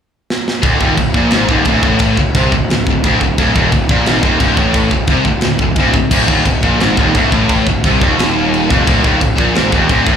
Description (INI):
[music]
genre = heavy metal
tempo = 175 BPM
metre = 4/4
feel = straight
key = unclear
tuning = A4 = 441 Hz
[part]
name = tight metal drum kit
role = drums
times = 0.3-10.2 s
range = china cymbal, crash cymbal, kick drum, snare drum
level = -16 LUFS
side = equal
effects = none
[part]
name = heavy high-gain guitar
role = riff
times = 0.6-10.2 s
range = D2 to C3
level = -16 LUFS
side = equal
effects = distortion, slapback echo
[part]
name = sludgy distorted guitar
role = riff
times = 0.6-10.2 s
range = D2 to C3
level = -16 LUFS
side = equal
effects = overdrive, slapback echo
[part]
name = fuzz picked electric bass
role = bass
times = 0.6-10.2 s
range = D1 to C2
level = -17 LUFS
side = equal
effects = overdrive
[sound]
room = light reverb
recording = live gig heard through the venue's PA, club reverb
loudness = -10 LUFS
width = side -8 dB against mid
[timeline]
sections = 0.6-10.2 A section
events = drum fill 0.3-0.6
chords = 0.0 N.C.; 0.6 D5